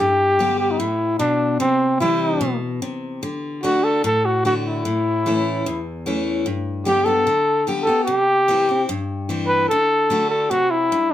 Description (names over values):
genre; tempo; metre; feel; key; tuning
country; 148 BPM; 4/4; straight; G major; A4 = 441 Hz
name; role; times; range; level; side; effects
breathy trumpet; melody; 0.0-11.1 s; C4 to B4; -18 LUFS; equal; plate reverb
picked steel-string acoustic guitar; accompaniment; 0.0-11.1 s; E2 to G4; -23 LUFS; left 2 dB; none
room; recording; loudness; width
moderate studio ambience, RT60 0.4 s; none; -17 LUFS; side -12 dB against mid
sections
0.0-11.1 A section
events
none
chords
0.0 G; 1.6 C; 3.2 D; 4.8 A; 6.5 G; 8.1 C; 9.7 D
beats
0.39 0.79 1.20 | 1.60 2.01 2.41 2.82 | 3.22 3.63 4.03 4.44 | 4.84 5.25 5.65 6.06 | 6.46 6.87 7.27 7.67 | 8.08 8.48 8.89 9.29 | 9.70 10.10 10.50 10.91